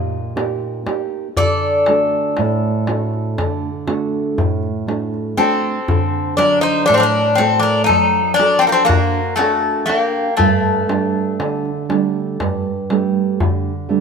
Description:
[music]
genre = greek folk, Greek bouzouki band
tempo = 120 BPM (eighths)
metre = 9/8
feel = straight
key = D phrygian dominant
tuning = A4 = 436 Hz
[part]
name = Greek bouzouki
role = melody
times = 0.0-11.8 s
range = A3 to Eb5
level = -17 LUFS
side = left 2 dB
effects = none
[part]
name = bowl-back mandolin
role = second line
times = 0.0-11.8 s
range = D4 to C5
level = -21 LUFS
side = left 3 dB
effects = none
[part]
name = nylon-string guitar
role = accompaniment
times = 0.0-14.0 s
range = G2 to F#5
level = -20 LUFS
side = right 4 dB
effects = none
[part]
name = darbuka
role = percussion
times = 0.4-13.6 s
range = none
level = -22 LUFS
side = left 1 dB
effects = none
[sound]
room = moderate plate reverb, RT60 2.5 s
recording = minimal, uncompressed stereo recording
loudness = -15 LUFS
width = side -5 dB against mid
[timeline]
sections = 0.0-5.9 A section; 5.9-14.0 A section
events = none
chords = 0.0 Eb; 1.4 D; 10.4 Gsus2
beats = 0.36 0.87 | 1.37 1.87 2.37 2.88 3.38 3.88 4.38 4.88 5.38 | 5.89 6.39 6.89 7.39 7.89 8.39 8.89 9.39 9.89 | 10.39 10.90 11.40 11.90 12.40 12.90 13.40 13.90

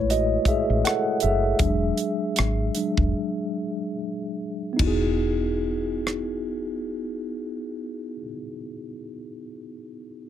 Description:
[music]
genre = R&B, neo-soul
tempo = 70-82 BPM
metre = 4/4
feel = swing 55% on 16ths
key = E major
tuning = A4 = 442 Hz
[part]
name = mellow tine electric piano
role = accompaniment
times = 0.0-10.3 s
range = F#3 to F#5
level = -26 LUFS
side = equal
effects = medium stereo tremolo, plate reverb
[part]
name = deep dub fingered electric bass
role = bass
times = 0.0-8.2 s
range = E1 to A1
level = -26 LUFS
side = equal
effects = none
[part]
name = tight funk drum kit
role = drums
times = 0.1-6.3 s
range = hi-hat, kick drum, ride cymbal, rim click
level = -26 LUFS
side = equal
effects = none
[sound]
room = light reverb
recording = none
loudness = -23 LUFS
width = side -10 dB against mid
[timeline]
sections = 0.0-4.8 A section; 4.8-8.2 B section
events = slowing down 0.0-4.8; tine electric piano solo 0.0-4.8; break 3.1-4.8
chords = 0.0 F#m7; 1.6 E7; 4.8 Emaj7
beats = 0.10 0.84 | 1.59 2.36 3.15 3.96 | 4.79 5.64 6.50 7.34

